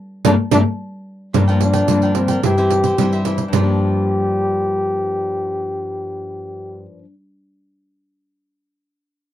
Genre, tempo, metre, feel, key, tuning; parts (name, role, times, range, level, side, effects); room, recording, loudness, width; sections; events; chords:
samba and choro; 110 BPM; 4/4; straight; G minor; A4 = 435 Hz
cavaquinho; accompaniment; 0.2-7.1 s; E4 to G5; -29 LUFS; right 2 dB
pandeiro; percussion; 0.2-3.7 s; -20 LUFS; right 10 dB
breathy trombone; melody; 0.3-6.9 s; C4 to G4; -20 LUFS; left 1 dB
nylon-string guitar; accompaniment; 0.3-7.1 s; G2 to E4; -24 LUFS; left 5 dB
nylon-string guitar; bass; 0.3-6.9 s; G2 to G3; -21 LUFS; equal
light reverb; dry, close 1970s-style studio recording; -15 LUFS; side -12 dB against mid
0.0-1.3 A section; 1.3-3.5 B section; 3.5-7.9 C section
band accent 0.0-1.3
0.0 Gmadd9; 1.3 Gm7; 2.4 C/G; 3.5 Gm7